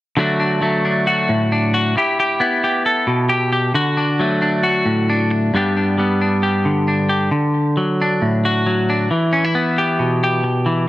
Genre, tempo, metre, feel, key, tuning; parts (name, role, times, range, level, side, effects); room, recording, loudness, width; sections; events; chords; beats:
highlife; 134 BPM; 4/4; swing 53% on 16ths; D major; A4 = 441 Hz
semi-hollow electric guitar; solo; 0.2-10.9 s; G2 to A4; -15 LUFS; equal
light reverb; -15 LUFS; side -16 dB against mid
0.2-7.3 A section; 7.3-10.9 B section
0.2 D; 2.0 Em; 3.7 D; 5.5 G; 7.3 D; 9.1 Em
| 0.17 0.62 1.07 1.51 | 1.96 2.40 2.85 3.30 | 3.75 4.19 4.64 5.08 | 5.53 5.98 6.43 6.87 | 7.32 7.77 8.21 8.66 | 9.11 9.55 10.00 10.44